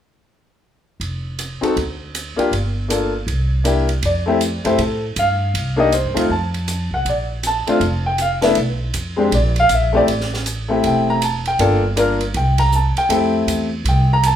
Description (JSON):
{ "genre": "jazz piano trio", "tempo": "159 BPM", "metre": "4/4", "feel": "swing 64% on 8ths", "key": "F major", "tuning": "A4 = 440 Hz", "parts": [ { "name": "upright bass", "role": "bass", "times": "1.0-14.4 s", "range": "E1 to A2", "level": "-20 LUFS", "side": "right 1 dB", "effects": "none" }, { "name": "compact cocktail drum kit", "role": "drums", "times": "1.0-14.3 s", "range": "hi-hat, kick drum, ride cymbal, snare drum", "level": "-28 LUFS", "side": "right 4 dB", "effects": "none" }, { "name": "bright upright piano", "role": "melody", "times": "1.6-14.4 s", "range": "Ab3 to Bb5", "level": "-17 LUFS", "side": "left 1 dB", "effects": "none" } ], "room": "moderate large studio reverb, RT60 0.9 s", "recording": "band playing live in one room", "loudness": "-16 LUFS", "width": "side -10 dB against mid", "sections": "1.0-4.0 A section; 4.0-14.4 B section", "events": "none", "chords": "1.0 N.C.; 2.5 Gm7; 3.3 C9; 4.0 Fadd9; 5.5 Cm; 6.3 F; 7.0 Bbmaj7; 8.6 B(b5, no3); 9.3 N.C.; 10.1 Am7; 11.6 Gm7; 12.3 Am7/C; 13.1 Fmaj9" }